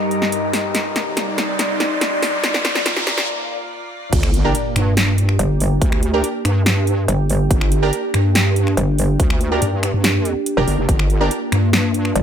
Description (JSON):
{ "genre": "heavy wobble dubstep", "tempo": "142 BPM", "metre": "4/4", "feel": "half-time", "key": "G minor", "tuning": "A4 = 440 Hz", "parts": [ { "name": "evolving wavetable pad", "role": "sustained chords", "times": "0.0-12.2 s", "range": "G2 to D5", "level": "-24 LUFS", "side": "equal", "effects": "ensemble chorus, built-in reverb, phaser, sidechain pumping" }, { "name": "riser and sub drop", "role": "sound effects", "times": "0.0-5.8 s", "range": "none", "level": "-25 LUFS", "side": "equal", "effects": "none" }, { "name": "airy breathy pad", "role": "texture", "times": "0.0-3.3 s", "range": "Eb4 to C6", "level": "-24 LUFS", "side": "left 1 dB", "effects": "chorus, sidechain pumping" }, { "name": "big-room dance drum kit", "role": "drums", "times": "0.1-12.2 s", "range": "crash cymbal, finger snaps, hi-hat, snare drum", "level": "-21 LUFS", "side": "equal", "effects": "none" }, { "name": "wobble bass", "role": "bass", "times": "4.1-12.1 s", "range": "F1 to G2", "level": "-18 LUFS", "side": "equal", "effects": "chorus, overdrive" }, { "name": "electronic kick drum", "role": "drums", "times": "4.1-11.0 s", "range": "none", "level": "-17 LUFS", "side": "equal", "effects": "none" }, { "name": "orchestra-hit-like synth stab", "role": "stabs", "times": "4.4-11.3 s", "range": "D4 to Bb4", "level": "-22 LUFS", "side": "right 2 dB", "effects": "built-in reverb, digital delay" }, { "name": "metallic wobble bass", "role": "bass", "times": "5.4-12.2 s", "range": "F1 to G1", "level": "-16 LUFS", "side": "equal", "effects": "distortion, chorus, overdrive" } ], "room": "light reverb", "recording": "high-pass filter", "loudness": "-15 LUFS", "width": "side -8 dB against mid", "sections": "0.0-4.1 A section; 4.1-12.2 B section", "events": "build-up 0.0-4.1; drum fill 0.0-3.3; riser 0.0-3.3; filter sweep 0.0-4.1; break 3.3-4.1; drop 4.1-12.2; impact 4.1-5.8", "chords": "0.0 Eb/G; 0.7 Cmadd9; 2.4 Bb; 4.1 Gm" }